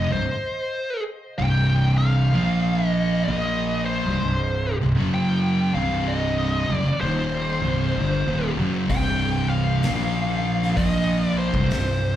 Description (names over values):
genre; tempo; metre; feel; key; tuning
stoner and doom metal; 64 BPM; 4/4; swing 64% on 8ths; C minor; A4 = 440 Hz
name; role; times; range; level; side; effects
fuzz lead guitar; melody; 0.0-12.2 s; C5 to G5; -26 LUFS; left 1 dB; wah, distortion, slapback echo, tape echo
thick fuzz guitar; riff; 0.0-12.2 s; C2 to Bb3; -25 LUFS; left 5 dB; distortion, slapback echo
thick fuzz guitar; riff; 0.0-12.2 s; C2 to Bb3; -25 LUFS; right 5 dB; distortion
fuzz fingered electric bass; bass; 0.0-12.2 s; C1 to Bb1; -26 LUFS; equal; overdrive
oversized low-tuned drum kit; drums; 8.9-12.0 s; hi-hat, kick drum, snare drum; -29 LUFS; equal; none
room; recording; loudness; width
light reverb; live gig heard through the venue's PA, club reverb; -20 LUFS; side -12 dB against mid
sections
0.0-12.2 A section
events
none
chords
0.0 C5; 2.3 Bb5; 3.3 Cm; 9.8 Bb5; 10.8 C5